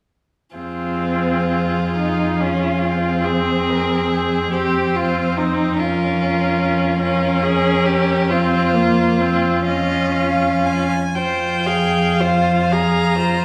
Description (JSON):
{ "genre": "classical, slow romantic movement for string quartet", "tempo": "37-50 BPM (dotted quarters)", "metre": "12/8", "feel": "rubato", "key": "F minor", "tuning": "A4 = 440 Hz", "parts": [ { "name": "warm violin", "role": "melody", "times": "0.6-13.4 s", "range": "Ab4 to Bb5", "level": "-27 LUFS", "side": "equal", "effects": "none" }, { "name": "rich violin", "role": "second line", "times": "0.6-13.4 s", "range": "Eb4 to F5", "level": "-24 LUFS", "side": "equal", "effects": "none" }, { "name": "rich viola", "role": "accompaniment", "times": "0.6-13.4 s", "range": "Bb3 to Ab4", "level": "-23 LUFS", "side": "equal", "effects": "none" }, { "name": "warm cello", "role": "bass", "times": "0.6-13.4 s", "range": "F2", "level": "-23 LUFS", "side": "equal", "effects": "none" } ], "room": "wet recital hall reverb, RT60 1.5 s", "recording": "recorded in a church or concert hall", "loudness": "-18 LUFS", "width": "mono", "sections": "0.6-11.2 A section; 11.2-13.4 B section", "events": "none", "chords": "0.6 Fm; 5.8 Bbm/F; 11.2 Fm", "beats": "| 0.56 1.96 3.25 4.53 | 5.79 7.01 8.30 9.67 | 11.15 12.72" }